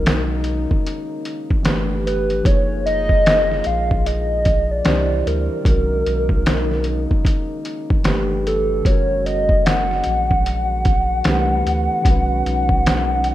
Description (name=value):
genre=lo-fi hip hop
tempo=75 BPM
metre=4/4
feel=swing 62% on 16ths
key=unclear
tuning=A4 = 439 Hz
part: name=warbly nostalgic lead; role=melody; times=0.0-13.3 s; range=A4 to Gb5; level=-20 LUFS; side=equal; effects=chorus
part: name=bright reed electric piano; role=accompaniment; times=0.0-13.3 s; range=D#3 to Db5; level=-27 LUFS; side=right 1 dB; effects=cassette tape
part: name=mellow French horn section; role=sustained chords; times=0.0-13.3 s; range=C#3 to Ab4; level=-30 LUFS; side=left 2 dB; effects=none
part: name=soft dub sub bass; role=bass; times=0.0-13.3 s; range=Gb1 to D2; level=-22 LUFS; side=equal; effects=none
part: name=lo-fi sampler-style drum kit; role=drums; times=0.1-13.3 s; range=finger snaps, hi-hat, kick drum, snare drum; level=-19 LUFS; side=equal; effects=overdrive
room=light reverb, digital ambience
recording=rough home demo mix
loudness=-16 LUFS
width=side -14 dB against mid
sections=0.0-13.3 A section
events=none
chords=0.0 Bmaj9; 1.7 Gadd9; 2.5 Gbmaj9; 4.9 Cadd9; 5.7 Bmaj9; 8.1 Gadd9; 8.9 Gbadd9; 11.3 Cmaj9; 12.1 Badd9